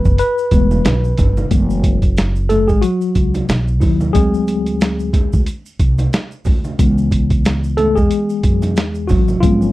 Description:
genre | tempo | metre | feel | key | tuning
hip hop, jazz-hop | 91 BPM | 4/4 | swing 57% on 16ths | F# minor | A4 = 435 Hz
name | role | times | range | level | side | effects
mellow tine electric piano | accompaniment | 0.0-9.7 s | E3 to B4 | -17 LUFS | left 2 dB | medium stereo tremolo
upright bass | bass | 0.1-9.7 s | E1 to F#2 | -17 LUFS | equal | none
boom bap sampler-style drum kit | drums | 0.1-9.6 s | hi-hat, kick drum, snare drum | -16 LUFS | equal | none
maracas and congas | percussion | 0.1-9.7 s | none | -28 LUFS | right 3 dB | none
room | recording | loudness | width
little or no reverb | dry, close 1970s-style studio recording | -13 LUFS | side -17 dB against mid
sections
0.0-1.5 A section; 1.5-9.7 B section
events
tine electric piano solo 0.0-1.5, 1.5-9.7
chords
0.0 F#m11 (rootless); 1.5 F#m11; 4.2 D7#11; 6.8 C#m7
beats
0.19 0.85 | 1.51 2.17 2.83 3.49 | 4.15 4.81 5.47 6.13 | 6.79 7.45 8.11 8.77 | 9.43

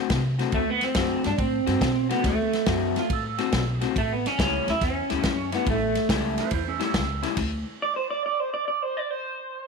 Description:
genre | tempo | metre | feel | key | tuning
electric blues shuffle | 140 BPM | 4/4 | swing 67% on 8ths | D mixolydian | A4 = 440 Hz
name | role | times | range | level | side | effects
electric guitar through a small old amp | riff | 0.0-7.4 s | A2 to F#4 | -30 LUFS | left 15 dB | spring reverb
upright bass | bass | 0.1-7.6 s | A1 to C3 | -30 LUFS | equal | none
natural country drum kit | drums | 0.1-7.5 s | crash cymbal, kick drum, ride cymbal, snare drum | -28 LUFS | equal | none
electric guitar through a small old amp | melody | 0.5-9.7 s | A3 to D5 | -26 LUFS | right 3 dB | wide subtle chorus
clean lap steel guitar | second line | 3.0-7.3 s | C#4 to C5 | -32 LUFS | right 12 dB | none
room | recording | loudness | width
light reverb, studio reverb | 1960s-style stereo with parts hard left and right | -23 LUFS | side -4 dB against mid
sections
0.0-9.7 A section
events
stop 7.4-9.7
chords
0.0 D7; 4.0 A7; 7.4 Csus2/D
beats
0.11 | 0.53 0.96 1.39 1.82 | 2.25 2.67 3.10 3.53 | 3.96 4.38 4.81 5.24 | 5.67 6.09 6.52 6.95 | 7.38 7.80 8.23 8.66 | 9.08 9.51

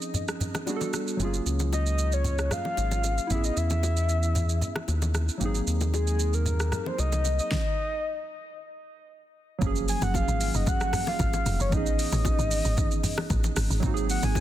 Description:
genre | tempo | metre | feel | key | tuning
amapiano | 114 BPM | 4/4 | straight | unclear | A4 = 439 Hz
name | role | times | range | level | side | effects
warm analog keys | accompaniment | 0.0-14.4 s | E3 to A4 | -32 LUFS | right 3 dB | chorus
deep house drum kit | drums | 0.0-14.4 s | hi-hat, kick drum, rim click, shaker, snare drum | -31 LUFS | equal | overdrive
congas and bongos | percussion | 0.1-14.4 s | none | -33 LUFS | left 2 dB | none
round analog bass | bass | 1.2-7.4 s | Gb1 to E2 | -26 LUFS | equal | none
soft octave-layered synth lead | melody | 1.7-14.4 s | Ab4 to Ab5 | -32 LUFS | left 2 dB | chorus, ping-pong delay
deep log drum bass | bass | 9.6-14.4 s | F1 to A1 | -27 LUFS | equal | none
room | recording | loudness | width
digital ambience | dense, heavily limited modern master | -24 LUFS | side -13 dB against mid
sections
0.0-9.6 A section; 9.6-14.4 B section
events
kick muted 1.2-2.2; stop 7.5-9.6; drop 9.6-14.4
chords
0.0 Dbmaj9; 0.7 Gmaj9; 1.2 Gbmaj9; 3.3 Amaj9#11 (rootless); 5.4 Ab7; 7.5 N.C.; 9.6 Gbmaj9; 11.7 Amaj9#11; 13.8 Ab7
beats
0.14 0.67 | 1.20 1.72 2.25 2.78 | 3.30 3.83 4.36 4.88 | 5.41 5.93 6.46 6.99 | 7.51 8.04 8.57 9.09 | 9.62 10.14 10.67 11.20 | 11.72 12.25 12.78 13.30 | 13.83 14.36

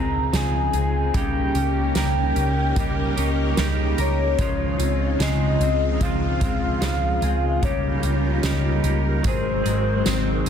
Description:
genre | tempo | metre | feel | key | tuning
dream pop | 74 BPM | 4/4 | straight | Db lydian | A4 = 440 Hz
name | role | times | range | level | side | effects
soft octave-layered synth lead | melody | 0.0-10.4 s | C5 to Bb5 | -27 LUFS | left 1 dB | chorus, phaser, tape echo
clean electric guitar | accompaniment | 0.0-10.5 s | Ab2 to Ab4 | -29 LUFS | right 5 dB | tremolo, wide subtle chorus
string machine, cellos | sustained chords | 0.0-10.5 s | Db3 to C5 | -28 LUFS | right 1 dB | phaser, ensemble chorus
mellow electric guitar | arpeggios | 0.0-10.5 s | Ab2 to Bb4 | -28 LUFS | left 6 dB | wide subtle chorus, tape echo
vintage muted picked electric bass | bass | 0.0-10.5 s | Ab1 to Db2 | -24 LUFS | equal | none
soft-mallet drum kit | drums | 0.3-10.5 s | hi-hat, kick drum, snare drum, tambourine | -27 LUFS | equal | none
room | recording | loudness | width
light reverb, small room ambience | dense, heavily limited modern master | -19 LUFS | side -8 dB against mid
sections
0.0-10.5 A section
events
none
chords
0.0 Dbmaj7; 1.1 Eb7/Db; 4.4 Dbmaj7; 7.6 Eb7/Db; 9.2 Ab7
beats
0.33 | 1.14 1.95 2.76 3.57 | 4.38 5.20 6.00 6.82 | 7.63 8.44 9.25 10.06

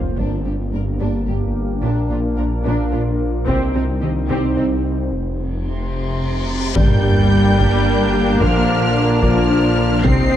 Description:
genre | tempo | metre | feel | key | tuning
cinematic, hybrid orchestral and electronic film score | 73 BPM (dotted quarters) | 6/8 | straight | G minor | A4 = 442 Hz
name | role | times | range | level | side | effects
warbly tape-like pad | sustained chords | 0.0-10.4 s | G3 to C5 | -25 LUFS | equal | chorus, built-in reverb, phaser, low-pass filter
tight sequenced synth | arpeggios | 0.0-10.4 s | C3 to Bb4 | -27 LUFS | left 2 dB | none
wide detuned saw bass | bass | 0.0-10.4 s | F1 to C2 | -23 LUFS | equal | chorus
rich studio violin section | melody | 0.2-10.4 s | G4 to C7 | -28 LUFS | left 2 dB | low-pass filter
rich studio violin section | second line | 0.2-10.4 s | C4 to G5 | -28 LUFS | left 4 dB | none
clear symphonic viola section | accompaniment | 0.2-10.4 s | Bb3 to Eb4 | -24 LUFS | equal | low-pass filter
warm French horn section | sustained chords | 0.2-10.4 s | C3 to Eb4 | -24 LUFS | left 3 dB | low-pass filter
clear symphonic cello section | bass | 0.2-10.4 s | G2 to C4 | -25 LUFS | right 2 dB | none
rich studio double bass section | bass | 0.2-10.4 s | G1 to G2 | -22 LUFS | right 2 dB | none
taiko ensemble | drums | 0.2-10.4 s | none | -20 LUFS | equal | none
reverse cymbal and sub drop | sound effects | 6.1-8.4 s | none | -26 LUFS | left 1 dB | none
clear trombone section | sustained chords | 6.8-10.4 s | D3 to C4 | -27 LUFS | right 2 dB | low-pass filter
room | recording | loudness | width
moderate scoring stage reverb, RT60 1.7 s | dark, warm production | -15 LUFS | side -11 dB against mid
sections
0.2-6.8 A section; 6.8-10.4 B section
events
drum fill 0.0; filter sweep 0.2-6.8; break 5.1-6.8; reverse cymbal 6.1-6.8; impact 6.8-8.4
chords
0.2 Gm; 1.8 Bb; 3.5 Cm; 5.1 F5; 6.8 Gm; 8.4 Bb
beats
| 0.18 1.01 | 1.83 2.65 | 3.47 4.29 | 5.12 5.94 | 6.76 7.58 | 8.40 9.22 | 10.05

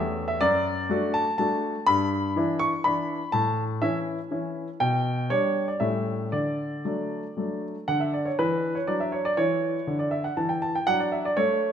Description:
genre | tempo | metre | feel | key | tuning
classical-period piano sonatina | 121 BPM | 3/4 | rubato | D major | A4 = 440 Hz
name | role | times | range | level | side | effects
clear baby grand piano | solo | 0.0-11.7 s | E2 to C#6 | -24 LUFS | equal | none
room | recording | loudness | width
wet recital hall reverb, RT60 1.6 s | none | -24 LUFS | side -8 dB against mid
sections
0.0-7.9 A section; 7.9-11.7 B section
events
none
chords
0.4 D/F#; 1.9 Em7/G; 3.3 A; 4.8 G/B; 5.8 A7; 6.3 D; 7.9 Dmaj13; 8.9 D/F#; 9.4 Dmaj7sus2; 10.9 D/F#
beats
| 0.40 0.90 1.38 | 1.87 2.37 2.86 | 3.35 3.83 4.32 | 4.81 5.31 5.81 | 6.33 6.86 7.37 | 7.88 8.38 8.88 | 9.38 9.88 10.37 | 10.87 11.37

